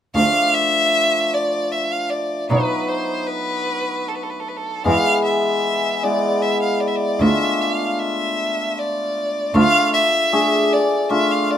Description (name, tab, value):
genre	klezmer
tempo	77 BPM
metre	3/4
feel	straight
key	D dorian sharp4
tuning	A4 = 440 Hz
part	hammered dulcimer	accompaniment	0.1-11.5 s	E3 to G#4	-21 LUFS	left 1 dB	none
part	clear cello	bass	0.1-9.6 s	D2 to B2	-18 LUFS	right 2 dB	none
part	rich violin	melody	0.2-11.6 s	A4 to F5	-19 LUFS	equal	none
room	moderate studio ambience, RT60 0.5 s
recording	minimal, uncompressed stereo recording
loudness	-16 LUFS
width	side -10 dB against mid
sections	0.2-9.5 A section; 9.5-11.6 A section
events	none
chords	0.2 Dm; 2.5 B; 4.8 E; 7.2 Dm